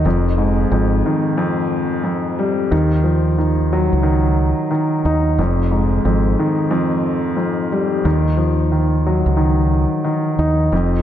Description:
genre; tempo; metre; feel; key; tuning
hip hop, boom-bap hip-hop; 90 BPM; 4/4; swing 62% on 16ths; unclear; A4 = 440 Hz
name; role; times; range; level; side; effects
dark grand piano; accompaniment; 0.0-11.0 s; F2 to Eb4; -17 LUFS; left 1 dB; high-pass filter, low-pass filter
deep dub fingered electric bass; bass; 0.0-11.0 s; F1 to Eb2; -17 LUFS; equal; none
room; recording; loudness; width
moderate lush hall reverb, RT60 3.3 s; dreamy mix soaked in reverb; -15 LUFS; side -10 dB against mid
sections
0.0-10.7 A section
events
none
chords
0.1 Fm9; 2.7 Ebm9; 5.4 Fm9; 8.1 Ebm9

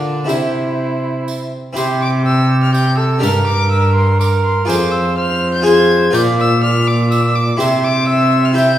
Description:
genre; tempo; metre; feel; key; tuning
classical, renaissance-style consort dance; 123 BPM; 3/4; straight; C mixolydian; A4 = 440 Hz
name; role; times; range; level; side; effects
warm violin; melody; 0.0-8.8 s; C5 to Ab6; -20 LUFS; left 3 dB; none
warm cor anglais; second line; 0.0-8.8 s; D4 to E5; -19 LUFS; right 3 dB; none
harpsichord; accompaniment; 0.0-8.8 s; F2 to D5; -19 LUFS; left 2 dB; none
rich cello; bass; 0.0-8.8 s; F2 to D3; -16 LUFS; equal; none
tambourine; percussion; 0.3-8.8 s; none; -32 LUFS; right 4 dB; none
room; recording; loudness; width
wet recital hall reverb, RT60 1.3 s; heard from further back in the room; -12 LUFS; side -12 dB against mid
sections
0.0-1.8 A section; 1.8-8.8 A section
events
none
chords
0.3 C; 3.2 Gm; 4.7 Fm; 6.1 Bb; 7.6 C

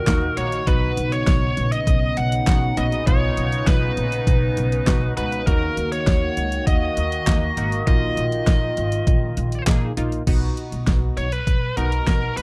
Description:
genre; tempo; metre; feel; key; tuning
synth-pop; 100 BPM; 4/4; straight; unclear; A4 = 440 Hz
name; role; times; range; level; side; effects
biting lead guitar; melody; 0.0-12.4 s; Bb4 to F#5; -27 LUFS; equal; overdrive, digital delay
sweeping resonant pad; sustained chords; 0.0-10.2 s; Bb2 to Gb4; -31 LUFS; equal; chorus, phaser
funky polysynth comp; accompaniment; 0.1-12.4 s; Bb3 to Ab4; -31 LUFS; equal; chorus
upright bass; bass; 0.1-12.4 s; Ab1 to Eb2; -26 LUFS; equal; none
pop drum kit; drums; 0.1-12.4 s; crash cymbal, handclaps, hi-hat, kick drum, snare drum; -22 LUFS; equal; overdrive
room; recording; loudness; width
little or no reverb; dark, warm production; -21 LUFS; mono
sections
0.0-10.3 A section; 10.3-12.4 B section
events
none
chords
0.0 Ebm; 0.7 Badd9; 5.5 Ebm; 7.9 Bbsus4; 10.3 B

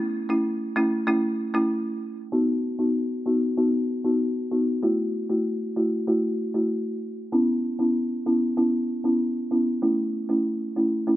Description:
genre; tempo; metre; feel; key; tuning
dancehall; 96 BPM; 4/4; straight; unclear; A4 = 443 Hz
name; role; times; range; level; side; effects
folk marimba with medium mallets; solo; 0.3-11.2 s; A3 to F#4; -22 LUFS; equal; none
room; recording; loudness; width
light reverb, studio reverb; low-pass filter; -22 LUFS; side -14 dB against mid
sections
0.0-2.3 A section; 2.3-11.2 B section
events
filter sweep 2.3-11.2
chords
0.0 A; 2.3 B; 4.8 F#m7; 7.3 C#m7; 9.8 A

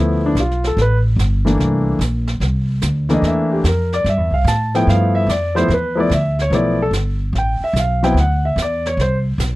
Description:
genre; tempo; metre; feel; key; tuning
jazz piano trio; 146 BPM; 4/4; swing 66% on 8ths; G mixolydian; A4 = 439 Hz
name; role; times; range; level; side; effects
warm concert grand piano; melody; 0.0-9.2 s; E3 to A5; -17 LUFS; left 1 dB; none
upright bass; bass; 0.0-9.6 s; G1 to A2; -17 LUFS; equal; none
jazz brush drum kit; drums; 0.4-9.6 s; brushed snare drum, hi-hat, snare drum; -29 LUFS; right 2 dB; none
room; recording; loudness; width
little or no reverb; dry, close 1970s-style studio recording; -15 LUFS; side -18 dB against mid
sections
0.0-9.6 A section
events
none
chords
0.0 G13; 1.6 C13; 4.9 G13; 8.2 D7sus2

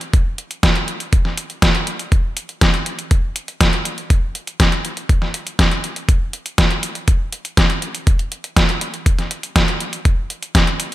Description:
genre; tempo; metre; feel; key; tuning
italo disco; 121 BPM; 4/4; straight; none; none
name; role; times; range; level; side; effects
detuned 8-bit digital drum machine; drums; 0.0-10.9 s; hi-hat, snare drum; -18 LUFS; equal; gated reverb
electronic kick drum; drums; 0.1-10.6 s; none; -15 LUFS; equal; overdrive
room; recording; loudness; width
little or no reverb; none; -16 LUFS; side -16 dB against mid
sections
0.0-10.9 A section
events
none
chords
none

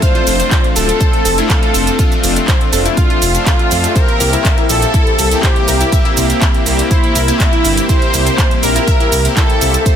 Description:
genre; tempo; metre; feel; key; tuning
progressive house; 122 BPM; 4/4; straight; F major; A4 = 440 Hz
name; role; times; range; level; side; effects
wide unison lead; melody; 0.0-10.0 s; E4 to C5; -19 LUFS; equal; sidechain pumping, ping-pong delay
warm studio violin section; second line; 0.0-10.0 s; E4 to C5; -24 LUFS; left 1 dB; sidechain pumping, ping-pong delay
shimmering ambient pad; sustained chords; 0.0-10.0 s; C3 to E5; -24 LUFS; equal; chorus, built-in reverb, sidechain pumping
analog pluck; arpeggios; 0.0-9.9 s; E4 to F5; -22 LUFS; left 2 dB; chorus, sidechain pumping, ping-pong delay
soft supersaw; stabs; 0.0-10.0 s; A3 to G4; -19 LUFS; left 2 dB; phaser, sidechain pumping, ping-pong delay
electronic kick drum; drums; 0.0-10.0 s; none; -13 LUFS; equal; studio ambience
pop drum kit; drums; 0.0-10.0 s; handclaps, hi-hat, shaker; -19 LUFS; right 2 dB; sidechain pumping on toms, studio ambience, sidechain pumping on hats, sidechain pumping on cymbals, sidechain pumping on perc
dark detuned saw bass; bass; 0.3-9.8 s; D1 to F2; -17 LUFS; equal; sidechain pumping
room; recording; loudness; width
little or no reverb; dense, heavily limited modern master; -10 LUFS; side -9 dB against mid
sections
0.0-10.0 A section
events
none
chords
0.0 F6; 4.0 C7

